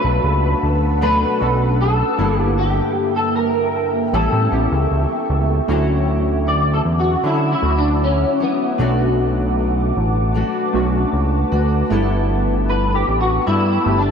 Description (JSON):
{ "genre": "indie pop, bedroom pop", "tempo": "77 BPM", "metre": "4/4", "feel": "straight", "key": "D major", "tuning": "A4 = 440 Hz", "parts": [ { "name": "electric guitar through a small old amp", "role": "melody", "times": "0.0-14.1 s", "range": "B3 to D5", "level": "-21 LUFS", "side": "left 1 dB", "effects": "ensemble chorus, diffuse ambient delay" }, { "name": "fingerpicked steel-string acoustic guitar", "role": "accompaniment", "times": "0.0-14.1 s", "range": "G2 to A4", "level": "-24 LUFS", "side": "left 4 dB", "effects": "analog chorus, vibrato effect" }, { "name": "warbly lo-fi synth keys", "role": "accompaniment", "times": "0.0-14.1 s", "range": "A3 to A4", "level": "-26 LUFS", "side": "right 4 dB", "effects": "chorus, cassette tape" }, { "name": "ethereal airy pad", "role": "sustained chords", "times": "0.0-14.1 s", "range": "Bb3 to E6", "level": "-25 LUFS", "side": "right 1 dB", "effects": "ensemble chorus, built-in reverb" }, { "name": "fat analog bass", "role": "bass", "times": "0.0-14.1 s", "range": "G1 to D3", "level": "-18 LUFS", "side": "equal", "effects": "none" } ], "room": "moderate cathedral reverb, RT60 4.9 s", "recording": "dreamy mix soaked in reverb", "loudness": "-15 LUFS", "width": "side -6 dB against mid", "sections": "0.0-5.7 A section; 5.7-14.1 B section", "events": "clean electric guitar solo 5.7-14.1", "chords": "0.0 Bm7; 2.2 Gm6; 4.1 A7; 5.7 Dmaj9; 8.8 Bm7; 11.9 G69" }